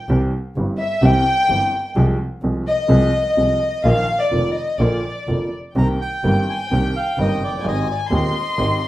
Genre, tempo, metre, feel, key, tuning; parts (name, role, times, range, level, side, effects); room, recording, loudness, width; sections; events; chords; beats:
tango; 128 BPM; 4/4; rubato; C minor from 5.8 s; A4 = 437 Hz
warm chamber violin section; second line; 0.0-8.9 s; D5 to C6; -21 LUFS; left 2 dB
clear upright piano; accompaniment; 0.1-8.8 s; Eb1 to Ab4; -21 LUFS; right 1 dB
dark double bass; bass; 0.1-8.8 s; F1 to Eb2; -21 LUFS; equal
bandoneon; melody; 5.8-8.9 s; D5 to Bb5; -27 LUFS; right 3 dB
warm chamber string section; stabs; 5.8-8.8 s; barely audible
wet studio reverb, RT60 0.6 s; rough home demo mix; -16 LUFS; side -15 dB against mid
0.0-5.8 A section; 5.8-8.9 B section
violin section solo 0.0-5.8
0.1 C; 2.0 Fm/C; 3.8 Bbsus4; 4.8 Bb; 5.8 Cm7; 7.6 Abmaj7
| 0.10 0.56 1.03 1.49 | 1.96 2.43 2.90 3.37 | 3.84 4.32 4.79 5.28 | 5.76 6.23 6.71 7.17 | 7.64 8.11 8.58